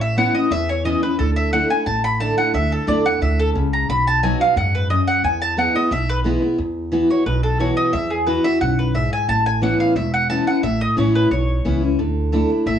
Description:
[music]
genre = bluegrass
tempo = 178 BPM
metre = 4/4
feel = straight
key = E major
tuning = A4 = 442 Hz
[part]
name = mandolin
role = melody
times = 0.0-12.8 s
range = G#4 to B5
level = -20 LUFS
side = equal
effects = plate reverb
[part]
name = picked steel-string acoustic guitar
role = accompaniment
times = 0.0-12.8 s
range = E2 to F#4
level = -20 LUFS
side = left 1 dB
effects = none
[part]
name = upright bass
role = bass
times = 0.0-12.8 s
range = E1 to F#2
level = -22 LUFS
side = right 1 dB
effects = none
[sound]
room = moderate studio reverb, RT60 0.7 s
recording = worn, warbling old tape, cassette tape, warbly pitch drift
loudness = -16 LUFS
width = side -9 dB against mid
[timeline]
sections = 0.0-6.6 A section; 6.6-12.8 B section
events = mandolin solo 0.0-6.6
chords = 0.0 Aadd9; 1.2 Dsus2; 3.9 B; 5.2 E; 6.6 Esus2; 9.3 Aadd9; 12.0 Dsus2

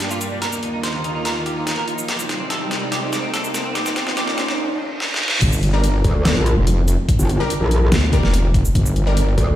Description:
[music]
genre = heavy wobble dubstep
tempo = 144 BPM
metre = 4/4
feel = half-time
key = G minor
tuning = A4 = 440 Hz
[part]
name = clean electric guitar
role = melody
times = 0.0-4.5 s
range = G3 to C5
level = -26 LUFS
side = right 1 dB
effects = lush chorus, digital delay
[part]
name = supersaw pad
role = sustained chords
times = 0.0-5.4 s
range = C2 to F4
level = -26 LUFS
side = right 1 dB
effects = sidechain pumping
[part]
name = dubstep drum kit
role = drums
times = 0.0-9.5 s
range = crash cymbal, hi-hat, shaker, snare drum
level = -24 LUFS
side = equal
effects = overdrive, high-pass filter on hats, high-pass filter on snare, high-pass filter on perc, high-pass filter on cymbals
[part]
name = riser and reverse cymbal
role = sound effects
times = 1.5-5.4 s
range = none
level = -28 LUFS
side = right 1 dB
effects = none
[part]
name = wobble bass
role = bass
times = 5.4-9.4 s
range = F1 to D2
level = -16 LUFS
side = equal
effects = chorus, overdrive
[part]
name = electronic kick drum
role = drums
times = 5.4-9.5 s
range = none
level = -18 LUFS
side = equal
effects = overdrive
[part]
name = orchestra-hit-like synth stab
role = stabs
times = 5.7-9.2 s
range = G3 to Bb4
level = -26 LUFS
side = left 1 dB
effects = built-in reverb, digital delay
[part]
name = metallic wobble bass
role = bass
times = 6.0-9.6 s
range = G1 to D2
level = -16 LUFS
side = equal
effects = chorus, overdrive
[sound]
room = light reverb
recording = played on a big sound system in a bare room, large studio reverb, high-pass filter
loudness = -17 LUFS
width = side -12 dB against mid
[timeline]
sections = 0.0-5.4 A section; 5.4-9.6 B section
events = build-up 0.0-5.4; drum fill 0.0-4.6, 5.0-5.4; riser 1.5-4.6; reverse cymbal 4.6-5.4; drop 5.4-9.6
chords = 0.4 Ebsus2; 2.1 Cm; 3.8 Ebsus2; 5.4 Gm

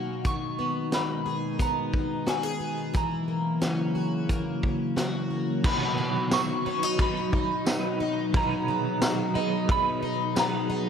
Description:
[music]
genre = dream pop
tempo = 89 BPM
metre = 4/4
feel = straight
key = B major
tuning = A4 = 441 Hz
[part]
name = soft synth bell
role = melody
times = 0.0-10.9 s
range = F#5 to C#6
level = -31 LUFS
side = right 1 dB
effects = chorus, phaser, ping-pong delay
[part]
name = warbly tape-like pad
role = sustained chords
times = 0.0-10.9 s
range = B2 to G#4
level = -32 LUFS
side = right 1 dB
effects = chorus, built-in reverb
[part]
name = picked plugged-in twelve-string acoustic guitar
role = arpeggios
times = 0.0-10.9 s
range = D#3 to G#4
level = -31 LUFS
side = left 3 dB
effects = lush chorus, ping-pong delay
[part]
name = vintage drum kit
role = drums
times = 0.2-10.5 s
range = crash cymbal, hi-hat, kick drum, ride cymbal, snare drum, tambourine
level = -29 LUFS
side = equal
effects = none
[part]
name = semi-hollow electric guitar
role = accompaniment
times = 5.6-10.9 s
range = B2 to B4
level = -32 LUFS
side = right 4 dB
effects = tremolo, ensemble chorus
[sound]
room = moderate lush hall reverb, RT60 3.0 s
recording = dark, warm production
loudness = -24 LUFS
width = side -7 dB against mid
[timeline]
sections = 0.0-5.6 A section; 5.6-10.9 B section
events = none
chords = 0.3 Bmaj13; 3.0 F#7; 5.6 B

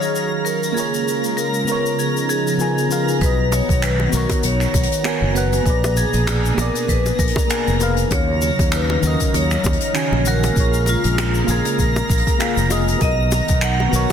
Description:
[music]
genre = sunset chillout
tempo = 98 BPM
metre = 4/4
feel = swing 57% on 16ths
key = unclear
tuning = A4 = 442 Hz
[part]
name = vibraphone with medium hard mallets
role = melody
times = 0.0-14.1 s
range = F4 to F#5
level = -23 LUFS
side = left 1 dB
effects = ping-pong delay
[part]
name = mellow FM electric piano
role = accompaniment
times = 0.0-14.1 s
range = Db3 to Ab5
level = -24 LUFS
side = moving between left 6 dB and right 8 dB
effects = chorus, tremolo, auto-pan, ping-pong delay
[part]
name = lush unison pad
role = sustained chords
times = 0.0-14.1 s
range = Cb3 to F5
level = -26 LUFS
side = equal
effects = chorus
[part]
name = jazz brush drum kit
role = drums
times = 0.0-14.1 s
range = finger snaps, hi-hat, shaker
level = -26 LUFS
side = left 2 dB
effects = soft clipping on snare
[part]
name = twinkling granular texture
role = texture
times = 0.0-14.1 s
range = A#5 to A#6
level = -28 LUFS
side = right 1 dB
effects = built-in reverb
[part]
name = fretless electric bass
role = bass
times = 3.2-14.0 s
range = F1 to Eb2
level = -20 LUFS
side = equal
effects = none
[part]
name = electronic kick drum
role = drums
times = 3.2-14.1 s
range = none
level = -21 LUFS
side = equal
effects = overdrive
[part]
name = bongos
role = percussion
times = 3.2-14.1 s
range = none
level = -29 LUFS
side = equal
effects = none
[sound]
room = light reverb, small room ambience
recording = dense, heavily limited modern master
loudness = -16 LUFS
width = side -8 dB against mid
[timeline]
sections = 0.0-3.2 A section; 3.2-14.1 B section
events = none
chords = 0.0 Ebm9; 0.8 Bbm7; 2.0 Db13; 3.2 Bmaj7; 5.7 Bb7b9; 8.1 Ebm9; 10.6 Bbm7; 13.0 Bmaj7

